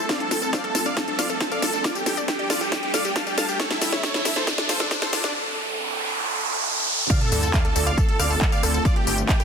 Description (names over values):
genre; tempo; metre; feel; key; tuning
uplifting trance; 137 BPM; 4/4; straight; D minor; A4 = 440 Hz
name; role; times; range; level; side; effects
dense compressed supersaw; melody; 0.0-9.4 s; D4 to A5; -27 LUFS; right 1 dB; sidechain pumping, ping-pong delay
shimmering ambient pad; sustained chords; 0.0-9.4 s; D3 to A4; -32 LUFS; equal; chorus, built-in reverb, vintage 12-bit sampler grit, sidechain pumping
riser, noise sweep and sub drop; sound effects; 0.0-8.9 s; none; -28 LUFS; right 2 dB; none
wide unison pluck; arpeggios; 0.1-5.3 s; C4 to G5; -32 LUFS; left 4 dB; sidechain pumping, ping-pong delay
electronic kick drum; drums; 0.1-9.4 s; none; -22 LUFS; equal; overdrive, high-pass filter on kick
techno drum kit; drums; 0.1-9.4 s; crash cymbal, handclaps, hi-hat, rim click, snare drum, tambourine; -26 LUFS; left 1 dB; overdrive, sidechain pumping on hats, sidechain pumping on perc, sidechain pumping on cymbals
supersaw stab; second line; 7.1-9.4 s; G4 to F5; -32 LUFS; right 2 dB; sidechain pumping, ping-pong delay
gritty driven synth bass; bass; 7.3-9.2 s; G1 to D2; -24 LUFS; equal; tube saturation, sidechain pumping
room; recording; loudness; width
light reverb, digital ambience; dense, heavily limited modern master, high-pass filter; -20 LUFS; side -6 dB against mid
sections
0.0-7.1 A section; 7.1-9.4 B section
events
build-up 0.0-7.1; drum fill 0.0-5.3; filter sweep 0.0-7.1; riser 0.0-7.1; noise sweep 5.3-7.1; drop 7.1-9.4; impact 7.1-8.9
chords
0.1 Dm7; 1.8 Gsus2; 3.6 A; 4.5 Dm7; 5.3 Fmaj7; 6.2 Am7; 7.1 Dm7; 8.9 Gsus2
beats
| 0.09 0.53 0.97 1.41 | 1.84 2.28 2.72 3.16 | 3.60 4.03 4.47 4.91 | 5.35 5.79 6.22 6.66 | 7.10 7.54 7.98 8.41 | 8.85 9.29